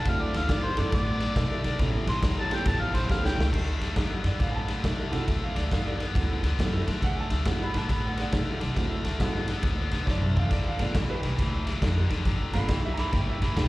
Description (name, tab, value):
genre	electric blues shuffle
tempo	138 BPM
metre	4/4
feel	swing 64% on 8ths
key	D mixolydian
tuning	A4 = 441 Hz
part	overdriven harmonica	melody	0.0-3.5 s	C5 to C6	-32 LUFS	left 1 dB	slapback echo
part	biting overdriven guitar	riff	0.0-13.7 s	G2 to B3	-33 LUFS	left 4 dB	none
part	upright bass	bass	0.0-13.7 s	G1 to C3	-29 LUFS	equal	none
part	warm upright piano	accompaniment	0.1-13.7 s	A3 to B5	-35 LUFS	right 4 dB	slapback echo
part	raw garage drum kit	drums	0.1-13.7 s	crash cymbal, kick drum, ride cymbal, snare drum, splash cymbal, toms	-28 LUFS	equal	none
room	little or no reverb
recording	live gig heard through the venue's PA, recital hall reverb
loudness	-24 LUFS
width	side -18 dB against mid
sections	0.0-3.5 A section; 3.5-13.7 A section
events	harmonica solo 0.0-3.5; drum fill 3.1-3.5, 10.1-10.5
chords	0.1 D7; 1.8 A7; 3.5 D7; 10.5 G7